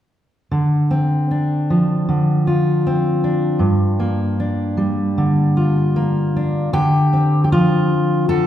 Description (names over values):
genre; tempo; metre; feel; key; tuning
folk, solo fingerstyle acoustic guitar; 77 BPM; 4/4; straight; unclear; A4 = 442 Hz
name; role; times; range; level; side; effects
fingerpicked steel-string acoustic guitar; solo; 0.5-8.5 s; G2 to A4; -15 LUFS; equal; none
room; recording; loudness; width
wet recital hall reverb, RT60 1.6 s; heard from further back in the room; -15 LUFS; side -11 dB against mid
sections
0.5-6.7 A section; 6.7-8.5 B section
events
none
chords
0.5 Dm7; 3.6 Gm7; 6.7 Dm7